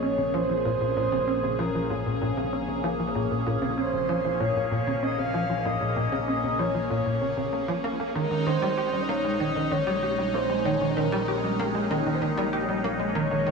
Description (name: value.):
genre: ambient, sequencer-driven space music.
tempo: 96 BPM.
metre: 4/4.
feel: straight.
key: Bb dorian.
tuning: A4 = 440 Hz.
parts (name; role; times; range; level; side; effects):
breathy flute-like synth lead; melody; 0.0-13.5 s; G4 to F5; -29 LUFS; right 1 dB; chorus, analog delay.
phased analog pad; sustained chords; 0.0-13.5 s; Ab3 to Ab4; -30 LUFS; left 1 dB; phaser, chorus.
tight sequencer bass; riff; 0.0-13.5 s; Bb2 to G4; -28 LUFS; right 1 dB; wide subtle chorus, analog delay.
analog drone; bass; 0.0-13.5 s; Bb1; -35 LUFS; left 1 dB; chorus.
room: wet plate reverb, RT60 3.2 s.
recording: none.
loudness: -24 LUFS.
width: side -4 dB against mid.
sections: 0.0-13.5 A section.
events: filter sweep on analog synth bass 0.0-13.5.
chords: 0.0 Bbm7; 8.2 Eb7sus4/Bb.